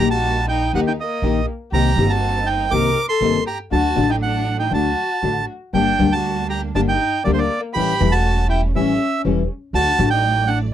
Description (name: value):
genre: tango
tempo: 120 BPM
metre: 4/4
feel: rubato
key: G harmonic minor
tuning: A4 = 440 Hz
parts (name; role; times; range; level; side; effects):
- bandoneon; melody; 0.0-10.6 s; C5 to D6; -21 LUFS; right 5 dB; none
- warm violin; second line; 0.0-10.6 s; A3 to Bb4; -25 LUFS; left 4 dB; none
- nylon-string guitar; accompaniment; 0.0-10.1 s; C3 to G4; -20 LUFS; left 6 dB; none
- clear symphonic string section; stabs; 0.0-10.7 s; F#3 to D5; -29 LUFS; right 6 dB; none
- upright bass; bass; 0.0-10.7 s; E1 to Eb2; -22 LUFS; right 1 dB; none
room: light reverb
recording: dry, close 1970s-style studio recording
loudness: -16 LUFS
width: side -10 dB against mid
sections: 0.0-10.7 A section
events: none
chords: 0.0 Eb; 1.7 Cm7; 3.7 D; 5.7 Gm; 7.8 A7; 9.7 D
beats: 0.23 0.74 1.24 | 1.73 2.23 2.72 3.22 | 3.72 4.22 4.72 5.23 | 5.74 6.25 6.75 7.25 | 7.75 8.26 8.75 9.25 | 9.74 10.24